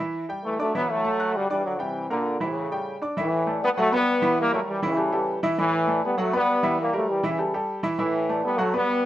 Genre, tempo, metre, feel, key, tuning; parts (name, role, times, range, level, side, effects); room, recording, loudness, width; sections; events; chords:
latin; 199 BPM; 4/4; straight; D major; A4 = 439 Hz
clear baby grand piano; accompaniment; 0.0-9.0 s; E3 to F#6; -26 LUFS; right 1 dB
clear trombone section; melody; 0.4-9.1 s; A2 to B3; -23 LUFS; equal; slapback echo
light reverb; rough home demo mix; -22 LUFS; side -13 dB against mid
0.0-3.2 A section; 3.2-9.1 B section
0.1 Em11; 0.7 Esus24; 1.3 G5; 1.9 C7; 2.6 A7; 3.8 Gmaj7; 4.4 C#dim7; 5.0 A7; 5.6 Dsus2; 6.2 Gmaj7; 6.8 C#dim7; 7.4 A7; 8.0 Dsus2